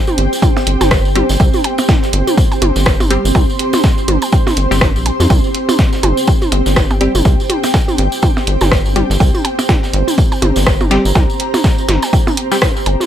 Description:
minimal techno; 123 BPM; 4/4; swing 58% on 16ths; A4 = 441 Hz
ethereal airy pad; texture; 0.0-13.1 s; C4 to C6; -19 LUFS; right 1 dB; ensemble chorus, built-in reverb, tremolo, sidechain pumping
electronic toms and percussion blips; percussion; 0.1-13.1 s; -19 LUFS; right 2 dB; dub echo
tambourine; percussion; 0.1-13.1 s; -25 LUFS; right 2 dB
rubbery square bass; bass; 0.2-13.0 s; G1 to F2; -15 LUFS; equal; sidechain pumping
dusty soul sampler-style drum kit; drums; 0.2-13.1 s; hi-hat, snare drum; -27 LUFS; equal; high-pass filter on snare, sidechain pumping on hats, high-pass filter on hats
punchy analog drum machine; drums; 0.2-13.0 s; hi-hat, rim click; -18 LUFS; equal
electronic kick drum; drums; 0.4-12.7 s; -13 LUFS; equal
wavetable chord stab; stabs; 1.2-12.6 s; G3 to G4; -19 LUFS; left 1 dB; dub echo
light reverb; -11 LUFS; side -10 dB against mid
0.0-13.1 A section
0.0 C5
0.42 0.91 | 1.40 1.89 2.38 2.86 | 3.35 3.84 4.33 4.81 | 5.30 5.79 6.28 6.76 | 7.25 7.74 8.23 8.72 | 9.20 9.69 10.18 10.67 | 11.15 11.64 12.13 12.62

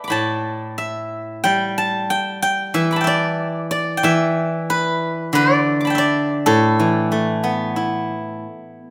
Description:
chinese traditional, Chinese solo plucked strings; 92 BPM; 4/4; rubato; A shang mode; A4 = 440 Hz
steel-string zither; solo; 0.0-8.9 s; A2 to D6; -20 LUFS; equal
moderate scoring stage reverb, RT60 1.8 s; -19 LUFS; mono
0.0-8.9 A section
| 0.11 0.78 1.45 2.11 | 2.75 3.41 4.05 4.70 | 5.34 5.99 6.63 7.28 | 7.94 8.61

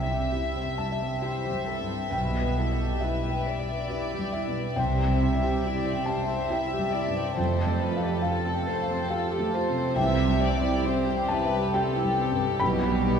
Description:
cinematic, emotional film score for orchestra; 69 BPM; 3/4; rubato; C major; A4 = 440 Hz
warm symphonic violin section; melody; 0.0-13.2 s; G4 to E5; -34 LUFS; left 2 dB
warm symphonic violin section; second line; 0.0-13.2 s; G4 to E5; -33 LUFS; left 2 dB
dark chamber viola section; accompaniment; 0.0-13.2 s; E3 to G4; -33 LUFS; right 2 dB
felt-muted upright piano; accompaniment; 0.0-13.2 s; B1 to B5; -29 LUFS; equal
concert harp; arpeggios; 0.0-13.2 s; B2 to F5; -33 LUFS; left 4 dB
dark symphonic double bass section; bass; 0.0-13.2 s; F1 to C2; -33 LUFS; right 2 dB
rich symphonic cello section; bass; 0.0-13.2 s; F2 to C3; -33 LUFS; right 2 dB
wet cathedral reverb, RT60 4.0 s; recorded in a church or concert hall; -24 LUFS; side -7 dB against mid
0.0-13.2 A section
0.0 C; 2.1 Em/B; 4.8 C; 7.4 Fadd9; 10.0 C; 12.6 Em/B
0.34 1.23 | 2.13 3.02 3.90 | 4.78 5.65 6.52 | 7.38 8.25 9.11 | 9.98 10.86 11.74 | 12.61

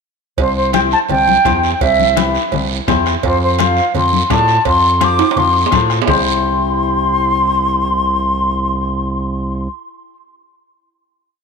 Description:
latin, cumbia; 169 BPM; 4/4; straight; C major; A4 = 445 Hz
concert flute; melody; 0.4-9.7 s; C5 to D6; -15 LUFS; equal
growling FM bass; bass; 0.4-9.7 s; C2 to A2; -19 LUFS; right 2 dB
bombo; percussion; 0.4-6.2 s; -24 LUFS; left 2 dB
congas; percussion; 0.4-6.2 s; -23 LUFS; left 10 dB
cowbell and timbales; percussion; 0.4-6.2 s; -22 LUFS; right 13 dB
guiro; percussion; 0.4-6.2 s; -26 LUFS; right 13 dB
clean electric guitar; accompaniment; 0.7-10.2 s; E4 to D5; -21 LUFS; left 9 dB
moderate echo chamber reverb, RT60 2.5 s; 1960s-style stereo with parts hard left and right; -12 LUFS; side -5 dB against mid
0.4-6.1 groove; 6.1-8.9 final chord
drum fill 5.2-6.1
0.4 C; 3.2 F; 6.1 C
| 0.38 0.74 1.09 1.45 | 1.81 2.16 2.52 2.88 | 3.23 3.59 3.95 4.30 | 4.66 5.01 5.37 5.72 | 6.08 6.43 6.79 7.14 | 7.50 7.86 8.21 8.57

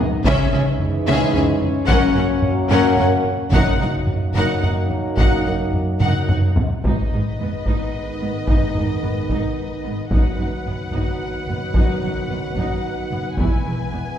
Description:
cinematic, epic orchestral film score; 73 BPM (dotted quarters); 6/8; straight; G# minor; A4 = 441 Hz
mellow French horn section; sustained chords; 0.0-14.2 s; G#3 to F#4; -27 LUFS; left 3 dB
mellow trombone section; sustained chords; 0.0-14.2 s; F#2 to G#3; -27 LUFS; right 2 dB
taiko ensemble; drums; 0.2-13.9 s; -21 LUFS; equal
rich symphonic violin section; melody; 0.3-14.2 s; D#5 to G#5; -28 LUFS; left 3 dB
warm symphonic violin section; second line; 0.3-14.2 s; G#4 to B4; -30 LUFS; left 2 dB
warm symphonic viola section; accompaniment; 0.3-14.0 s; B3 to E4; -27 LUFS; left 1 dB
warm symphonic cello section; bass; 0.3-14.0 s; E2 to C#3; -26 LUFS; right 2 dB
warm symphonic double bass section; bass; 0.3-14.0 s; E1 to C#2; -27 LUFS; right 1 dB
wet scoring stage reverb, RT60 1.7 s; heard from further back in the room; -17 LUFS; side -9 dB against mid
0.0-6.8 A section; 6.8-14.2 B section
drum fill 0.0, 6.0-6.8
0.3 C#m; 1.9 F#; 3.5 D#m/F#; 6.8 G#m; 10.1 B/F#; 13.4 E
| 0.26 1.08 | 1.89 2.70 | 3.52 4.35 | 5.18 6.01 | 6.85 7.67 | 8.49 9.31 | 10.12 10.93 | 11.75 12.56 | 13.38

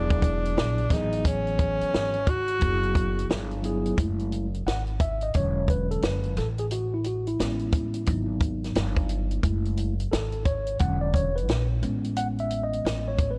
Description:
hip hop, jazz-hop; 88 BPM; 4/4; swing 62% on 16ths; F# minor; A4 = 440 Hz
breathy tenor saxophone; melody; 0.0-3.3 s; C#4 to F#4; -30 LUFS; equal
mellow tine electric piano; accompaniment; 0.0-13.4 s; D3 to F#5; -32 LUFS; equal
upright bass; bass; 0.0-13.4 s; E1 to A#1; -31 LUFS; equal
compact cocktail drum kit; drums; 0.1-13.4 s; hi-hat, kick drum, snare drum; -30 LUFS; equal
studio reverb; dark, warm production, lossy compression artefacts; -26 LUFS; mono
0.0-4.0 A section; 4.0-13.4 B section
tine electric piano solo 4.0-13.4
0.0 E9; 0.9 Amaj9; 2.6 F#9sus4; 4.0 F#m9; 5.3 E13; 6.4 Amaj9; 8.1 G#m7; 9.4 F#m9; 10.8 E13; 11.8 Amaj9
0.57 | 1.25 1.94 2.62 3.30 | 3.98 4.66 5.34 6.03 | 6.71 7.39 8.07 8.75 | 9.44 10.12 10.80 11.48 | 12.16 12.85

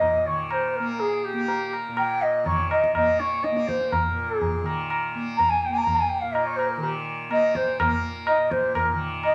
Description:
indian classical, Hindustani; 124 BPM; 3/4; straight; Bb raga bageshri; A4 = 440 Hz
bansuri; melody; 0.0-9.3 s; G4 to Bb5; -25 LUFS; equal
tanpura; drone; 0.0-9.3 s; Bb2 to Bb3; -34 LUFS; equal
tabla; percussion; 0.0-9.3 s; -30 LUFS; equal
wet studio reverb, RT60 0.8 s; -24 LUFS; mono
0.0-9.3 A section
0.02 0.51 | 1.00 1.49 1.98 | 2.47 2.95 3.44 | 3.93 4.41 4.90 | 5.38 5.86 6.35 | 6.83 7.31 7.79 | 8.27 8.75 9.23

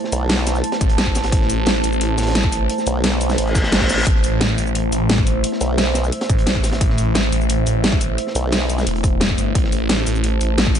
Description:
dark technical drum and bass; 175 BPM; 4/4; straight; A minor; A4 = 440 Hz
deep dark ambient pad; sustained chords; 0.0-10.8 s; A3 to A5; -23 LUFS; right 1 dB; chorus, built-in reverb, sidechain pumping
crunchy breakbeat drum kit; drums; 0.0-10.8 s; hi-hat, snare drum; -29 LUFS; equal; high-pass filter on hats, high-pass filter on snare, high-pass filter on room
formant-sweep wobble bass; bass; 0.1-0.6, 2.9-6.1, 8.4-8.9 s; A1 to B1; -20 LUFS; equal; chorus
dubstep drum kit; drums; 0.1-10.8 s; cabasa, hi-hat, snare drum; -21 LUFS; equal
phased detuned saw bass; bass; 0.8-10.8 s; E1 to A1; -20 LUFS; equal; phaser, tube saturation, sidechain pumping
electronic kick drum; drums; 0.8-10.7 s; -19 LUFS; equal
reverse cymbal; sound effects; 3.5-4.1 s; -23 LUFS; left 2 dB
little or no reverb; nothing above 10.4 kHz; -16 LUFS; side -9 dB against mid
0.0-10.8 A section
reverse cymbal 3.5-4.1
0.0 Am
0.29 0.64 0.98 | 1.32 1.67 2.01 2.35 | 2.69 3.04 3.38 3.72 | 4.07 4.41 4.75 5.09 | 5.44 5.78 6.12 6.47 | 6.81 7.15 7.50 7.84 | 8.18 8.52 8.87 9.21 | 9.55 9.89 10.24 10.58

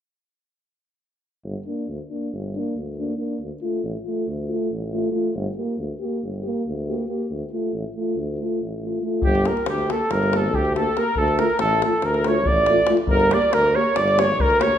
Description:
balkan folk, Balkan brass band; 278 BPM (eighths); 9/8; straight; G minor; A4 = 440 Hz
warm tuba; bass; 1.4-14.7 s; G1 to D2; -26 LUFS; equal
dark French horn; accompaniment; 1.7-14.7 s; D4 to G4; -28 LUFS; left 5 dB
dark euphonium; accompaniment; 1.7-14.7 s; A3 to Bb3; -29 LUFS; right 4 dB
clear flugelhorn; melody; 9.2-14.8 s; G4 to D5; -20 LUFS; right 2 dB
davul; percussion; 9.2-14.7 s; -26 LUFS; left 2 dB
bright trumpet; second line; 9.3-14.8 s; G4 to D5; -25 LUFS; left 4 dB
wet recital hall reverb, RT60 1.4 s; minimal, uncompressed stereo recording; -20 LUFS; side -10 dB against mid
1.4-9.2 A section; 9.2-14.8 B section
1.4 Gm; 3.4 Dm; 5.3 Gm; 7.3 Dm; 9.2 Gm; 11.2 Dm; 13.1 Gm
| 1.43 1.65 1.86 2.08 2.30 2.51 2.73 2.95 3.17 | 3.38 3.60 3.82 4.03 4.25 4.47 4.68 4.90 5.12 | 5.33 5.55 5.77 5.99 6.20 6.42 6.63 6.85 7.07 | 7.28 7.50 7.72 7.93 8.15 8.36 8.58 8.79 9.01 | 9.22 9.44 9.66 9.87 10.09 10.30 10.52 10.73 10.94 | 11.16 11.37 11.59 11.80 12.02 12.23 12.45 12.66 12.88 | 13.09 13.30 13.52 13.73 13.95 14.16 14.38 14.59

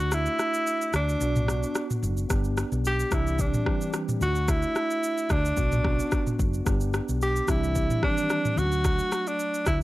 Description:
afrobeats; 110 BPM; 4/4; swing 55% on 16ths; A4 = 440 Hz
breathy tenor saxophone; melody; 0.0-9.8 s; D4 to G4; -27 LUFS; equal
mellow tine electric piano; accompaniment; 0.0-9.8 s; Eb3 to G4; -32 LUFS; equal; medium stereo tremolo
hollow-body short-scale fingered electric bass; bass; 0.0-9.8 s; F#1 to D2; -28 LUFS; equal
afro-pop drum kit; drums; 0.1-9.8 s; kick drum, rim click, shaker, toms; -28 LUFS; equal
little or no reverb; dry, gritty hardware recording; -23 LUFS; side -17 dB against mid
0.0-9.8 A section
kick muted 0.1-2.3
0.0 D; 1.2 Bm; 2.3 G; 3.1 Cadd9; 4.2 D; 5.6 Bm; 6.7 G; 7.5 Cadd9; 8.6 D
| 0.12 0.66 1.21 1.75 | 2.30 2.85 3.39 3.94 | 4.48 5.03 5.57 6.12 | 6.66 7.21 7.75 8.30 | 8.85 9.39

